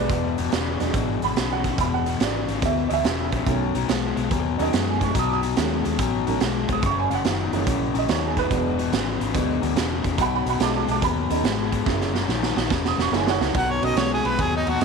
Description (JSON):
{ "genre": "electric blues shuffle", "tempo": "143 BPM", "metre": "4/4", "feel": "swing 67% on 8ths", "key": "B mixolydian", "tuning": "A4 = 445 Hz", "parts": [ { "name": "warm upright piano", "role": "accompaniment", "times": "0.0-14.8 s", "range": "D#3 to D#6", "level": "-27 LUFS", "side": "right 12 dB", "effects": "none" }, { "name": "crunchy overdriven guitar", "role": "riff", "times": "0.0-14.8 s", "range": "E2 to G#3", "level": "-25 LUFS", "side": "left 14 dB", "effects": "none" }, { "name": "vintage muted fingered electric bass", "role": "bass", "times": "0.0-14.8 s", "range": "E1 to F#2", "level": "-28 LUFS", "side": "left 1 dB", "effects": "none" }, { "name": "raw garage drum kit", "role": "drums", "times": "0.1-14.8 s", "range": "hi-hat, kick drum, ride cymbal, snare drum", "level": "-26 LUFS", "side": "right 5 dB", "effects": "none" }, { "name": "clear harmonica", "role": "melody", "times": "13.6-14.8 s", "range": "D#4 to F#5", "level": "-24 LUFS", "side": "right 3 dB", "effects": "overdrive" } ], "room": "light reverb, small room reverb", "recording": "1960s-style stereo with parts hard left and right", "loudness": "-20 LUFS", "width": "side -5 dB against mid", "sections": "0.0-13.6 A section; 13.6-14.8 A section", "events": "drum fill 11.9-13.6; harmonica solo 13.6-14.8", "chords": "0.1 E7; 3.5 B7; 6.8 F#7; 8.5 E7; 10.2 B7; 11.9 F#7; 13.6 B7" }